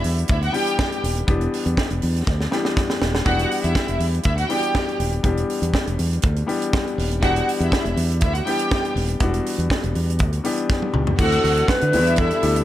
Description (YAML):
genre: disco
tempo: 121 BPM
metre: 4/4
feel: straight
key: E minor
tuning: A4 = 445 Hz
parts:
  - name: clear studio string section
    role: second line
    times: 0.0-12.6 s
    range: E4 to G5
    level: -25 LUFS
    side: right 1 dB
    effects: none
  - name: warm baby grand piano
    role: accompaniment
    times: 0.0-12.6 s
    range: E3 to E5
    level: -25 LUFS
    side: left 3 dB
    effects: none
  - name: fingered electric bass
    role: bass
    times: 0.0-12.6 s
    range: D#1 to D3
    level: -22 LUFS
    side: equal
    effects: none
  - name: tight funk drum kit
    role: drums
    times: 0.0-12.6 s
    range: crash cymbal, hi-hat, kick drum, snare drum, toms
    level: -23 LUFS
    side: right 1 dB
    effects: none
  - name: alto flute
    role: melody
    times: 11.2-12.6 s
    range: A4 to B4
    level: -20 LUFS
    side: equal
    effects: none
room: light reverb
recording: none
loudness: -18 LUFS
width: side -13 dB against mid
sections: 0.0-11.2 A section; 11.2-12.6 B section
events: drum fill 2.3-3.3, 10.7-11.2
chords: 0.0 Em7; 11.2 D9; 11.9 Em7